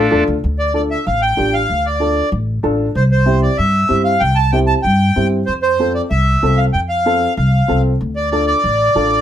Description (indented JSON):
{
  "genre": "latin",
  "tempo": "190 BPM",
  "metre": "4/4",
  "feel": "straight",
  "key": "D minor",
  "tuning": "A4 = 439 Hz",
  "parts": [
    { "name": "accordion", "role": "second line", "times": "0.0-9.2 s", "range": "F4 to A5", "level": "-16 LUFS", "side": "right 1 dB", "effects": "none" },
    { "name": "upright bass", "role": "bass", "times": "0.0-9.2 s", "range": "A1 to G2", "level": "-17 LUFS", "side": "equal", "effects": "none" },
    { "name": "dark upright piano", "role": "accompaniment", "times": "0.1-9.2 s", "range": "C4 to A4", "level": "-18 LUFS", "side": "left 1 dB", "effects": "none" }
  ],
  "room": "moderate small room reverb, RT60 0.5 s",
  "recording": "none",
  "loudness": "-13 LUFS",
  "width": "side -10 dB against mid",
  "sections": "0.4-9.2 A section",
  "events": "accordion solo 0.4-9.2",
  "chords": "0.4 Dm; 3.0 C; 5.5 F; 8.0 Dm"
}